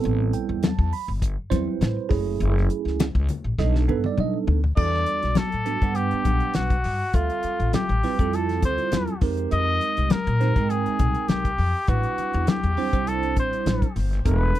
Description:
electric jazz fusion; 101 BPM; 4/4; straight; E phrygian from 4.8 s; A4 = 441 Hz
bell-like tine electric piano; accompaniment; 0.0-14.6 s; F#3 to B5; -27 LUFS; right 10 dB; phaser
damped 70s drum kit; drums; 0.0-14.6 s; crash cymbal, hi-hat, kick drum, snare drum, toms; -24 LUFS; left 1 dB
upright bass; bass; 0.1-14.5 s; E1 to B2; -24 LUFS; left 1 dB
congas; percussion; 0.1-14.6 s; -29 LUFS; left 8 dB
warm trumpet; melody; 4.8-14.6 s; F4 to Eb5; -26 LUFS; left 2 dB
little or no reverb; dry, close 1970s-style studio recording; -21 LUFS; side -13 dB against mid
0.0-4.8 A section; 4.8-14.6 B section
drum fill 3.6-4.8
0.0 Am9; 2.1 F#m9; 3.6 B7alt; 4.8 Em11; 7.1 Dm11; 9.2 Fm11; 11.9 Am11

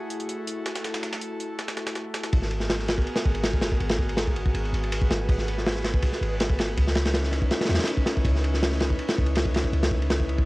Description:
drum and bass, jungle; 162 BPM; 4/4; straight; G# phrygian; A4 = 440 Hz
airy breathy pad; sustained chords; 0.0-10.5 s; A3 to B4; -32 LUFS; equal; chorus, cassette tape
breakbeat sampler-style drum kit; drums; 0.1-2.3 s; hi-hat, snare drum; -32 LUFS; right 1 dB; high-pass filter on hats, cassette tape, high-pass filter on snare, high-pass filter on room
warm 808-style bass; bass; 2.3-10.5 s; G#1 to E2; -27 LUFS; equal; tube saturation
crunchy breakbeat drum kit; drums; 2.3-10.5 s; kick drum, ride cymbal, snare drum; -24 LUFS; equal; cassette tape
light reverb; home recording on cassette; -23 LUFS; side -20 dB against mid
0.0-2.3 A section; 2.3-10.5 B section
drop 2.3-10.5
0.0 F#m7; 2.3 G#m9; 6.8 C#m9

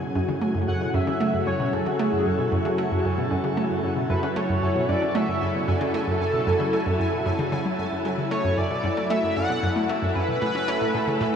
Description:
ambient, sequencer-driven space music; 114 BPM; 4/4; straight; F# minor; A4 = 440 Hz
lush unison pad; sustained chords; 0.0-11.4 s; C#3 to C#5; -26 LUFS; equal; chorus
analog pluck; riff; 0.0-11.4 s; F#2 to C#4; -26 LUFS; equal; chorus, tape echo
pulsing gated texture; texture; 0.0-11.4 s; A4 to G#5; -33 LUFS; right 2 dB; chorus, built-in reverb
pulse-width lead; melody; 0.7-11.4 s; G#4 to F#5; -27 LUFS; equal; chorus, tape echo
wet shimmer reverb, RT60 9.2 s; cassette tape, studio ambience; -22 LUFS; side -7 dB against mid
0.0-11.4 A section
0.0 F#m7; 10.4 Aadd9

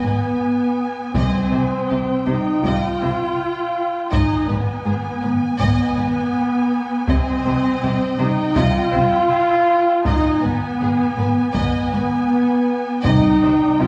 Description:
cinematic, epic orchestral film score; 81 BPM; 4/4; straight; C harmonic minor; A4 = 435 Hz
warm symphonic violin section; melody; 0.0-13.9 s; G5 to Ab5; -32 LUFS; equal
warm symphonic viola section; accompaniment; 0.0-13.9 s; Cb4 to F4; -28 LUFS; equal
warm French horn section; sustained chords; 0.0-13.9 s; Cb4 to F4; -22 LUFS; equal
dark symphonic double bass section; bass; 0.0-13.9 s; Ab1 to C2; -27 LUFS; equal
rich symphonic cello section; bass; 0.0-13.9 s; Ab2 to C3; -28 LUFS; equal
rich studio violin section; second line; 0.1-13.9 s; G4 to Eb5; -33 LUFS; equal
taiko ensemble; drums; 1.1-13.8 s; -28 LUFS; equal
timpani; percussion; 1.2-2.2, 13.1-13.9 s; C3; -26 LUFS; equal
wet scoring stage reverb, RT60 1.6 s; heard from further back in the room, small room ambience; -19 LUFS; mono
0.0-13.9 A section
0.0 Abm; 1.2 Cm; 4.1 Abm; 7.1 Cm; 10.1 Abm; 13.0 Cm

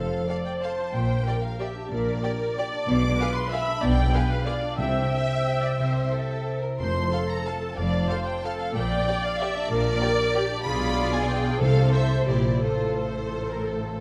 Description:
classical, orchestral ballroom waltz; 163-204 BPM; 3/4; rubato; F major; A4 = 441 Hz
warm symphonic violin section; melody; 0.0-14.0 s; C5 to D6; -35 LUFS; equal
rich symphonic viola section; accompaniment; 0.0-14.0 s; G4 to E5; -32 LUFS; equal
concert harp; arpeggios; 0.0-14.0 s; F2 to C5; -32 LUFS; equal
rich symphonic double bass section; bass; 0.0-14.0 s; F1 to C2; -33 LUFS; equal
warm symphonic cello section; bass; 0.0-14.0 s; F2 to C3; -32 LUFS; equal
warm symphonic violin section; second line; 0.3-14.0 s; E4 to F5; -35 LUFS; equal
timpani; percussion; 4.8-7.3, 11.6-12.1 s; F2 to C3; -31 LUFS; equal
moderate scoring stage reverb, RT60 1.6 s; -25 LUFS; mono
0.0-14.0 A section
0.0 F; 0.9 Gm/Bb; 2.9 Bdim7; 4.8 C; 6.8 F; 8.8 Gm/Bb; 10.7 Bdim7; 11.6 F/C; 12.3 C7/Bb; 12.6 F/A

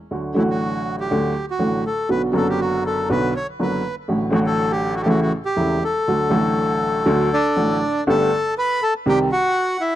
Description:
tango; 121 BPM; 4/4; rubato; D major; A4 = 440 Hz
clear upright piano; accompaniment; 0.1-9.3 s; E1 to G4; -19 LUFS; right 1 dB
bandoneon; melody; 0.4-10.0 s; D4 to B5; -21 LUFS; equal; tape echo
light reverb; dry, close 1970s-style studio recording; -18 LUFS; side -13 dB against mid
0.0-8.1 A section; 8.1-10.0 B section
0.1 D; 2.1 Bm; 4.1 D/A; 5.1 A; 6.1 D; 8.1 Gadd9; 9.1 Cm

